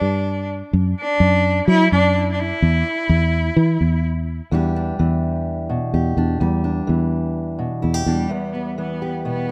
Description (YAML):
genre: indie folk with a building arrangement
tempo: 127 BPM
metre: 4/4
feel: straight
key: E minor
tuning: A4 = 437 Hz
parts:
  - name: rich cello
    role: melody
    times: 0.0-4.0, 8.1-9.5 s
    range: G3 to E4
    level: -23 LUFS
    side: equal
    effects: analog delay
  - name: fingered electric bass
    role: bass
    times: 0.0-8.3 s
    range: E2 to F#3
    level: -21 LUFS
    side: equal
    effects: none
  - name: fingerpicked steel-string acoustic guitar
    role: accompaniment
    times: 4.5-9.5 s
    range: E2 to G4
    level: -26 LUFS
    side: equal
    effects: none
room: small room ambience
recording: rough home demo mix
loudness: -20 LUFS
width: mono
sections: 0.0-4.5 A section; 4.5-8.3 B section; 8.3-9.5 C section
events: none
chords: 0.0 G5; 0.7 D/F#; 2.6 N.C.; 4.5 Em7; 8.3 Em